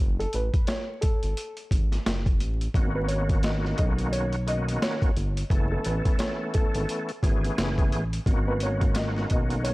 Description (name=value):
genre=hip hop, boom-bap hip-hop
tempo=87 BPM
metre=4/4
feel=swing 60% on 16ths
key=unclear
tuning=A4 = 437 Hz
part: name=smooth synth bass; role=bass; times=0.0-9.7 s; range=F#1 to B1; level=-28 LUFS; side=equal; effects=transformer saturation
part: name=dark upright piano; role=melody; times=0.2-9.7 s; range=A4 to D#5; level=-32 LUFS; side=equal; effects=high-pass filter, low-pass filter
part: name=boom bap sampler-style drum kit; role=drums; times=0.2-9.7 s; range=hi-hat, kick drum, snare drum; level=-26 LUFS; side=equal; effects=none
part: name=bright tonewheel organ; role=accompaniment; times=2.7-9.7 s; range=D#3 to A4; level=-31 LUFS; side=equal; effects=chorus vibrato, fast rotary speaker, cassette tape, high-pass filter, low-pass filter
room=digital ambience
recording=dry, gritty hardware recording, vinyl crackle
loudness=-23 LUFS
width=side -20 dB against mid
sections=0.0-9.7 A section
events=break 0.0-2.7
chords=0.0 F#madd9; 2.7 G#m11; 5.5 F#m11; 8.3 G#m11